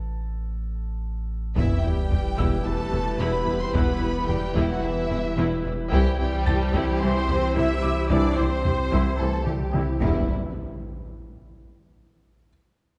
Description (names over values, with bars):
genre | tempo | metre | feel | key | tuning
cinematic, hybrid orchestral and electronic film score | 110 BPM | 4/4 | straight | E minor | A4 = 440 Hz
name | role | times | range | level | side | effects
pure sine sub bass | bass | 0.0-10.3 s | E1 to C2 | -32 LUFS | equal | none
bright concert grand piano | texture | 0.0-10.3 s | A4 to A6 | -42 LUFS | equal | tape echo
warm symphonic violin section | melody | 1.6-10.3 s | E5 to E6 | -36 LUFS | equal | low-pass filter
rich studio violin section | second line | 1.6-10.3 s | E4 to E5 | -36 LUFS | equal | none
warm symphonic viola section | accompaniment | 1.6-10.3 s | G3 to G4 | -33 LUFS | equal | low-pass filter
airy breathy pad | sustained chords | 1.6-10.3 s | E3 to C5 | -34 LUFS | equal | chorus, low-pass filter
mellow trombone section | sustained chords | 1.6-10.2 s | E3 to C4 | -38 LUFS | equal | none
warm French horn section | sustained chords | 1.6-10.2 s | E3 to E4 | -35 LUFS | equal | low-pass filter
clear studio cello section | bass | 1.6-10.3 s | C2 to E2 | -34 LUFS | equal | none
rich symphonic double bass section | bass | 1.6-10.3 s | E1 to C2 | -33 LUFS | equal | none
taiko ensemble | drums | 1.6-11.1 s | none | -30 LUFS | equal | none
sub drop and impact | sound effects | 1.6-3.7, 10.0-12.2 s | none | -32 LUFS | equal | none
room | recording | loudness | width
moderate concert hall reverb, RT60 1.8 s | dark, warm production | -24 LUFS | mono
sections
0.0-1.6 A section; 1.6-10.3 B section; 10.3-12.5 C section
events
break 0.0-1.6; drum fill 0.7-1.6, 9.5-10.3; impact 1.6-3.7, 10.3-12.5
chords
0.0 N.C.; 1.6 Em; 5.9 C; 10.0 Em; 10.3 N.C.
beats
0.47 1.02 | 1.56 2.11 2.65 3.20 | 3.74 4.29 4.83 5.38 | 5.92 6.47 7.02 7.56 | 8.11 8.65 9.20 9.74 | 10.29 10.83 11.38 11.93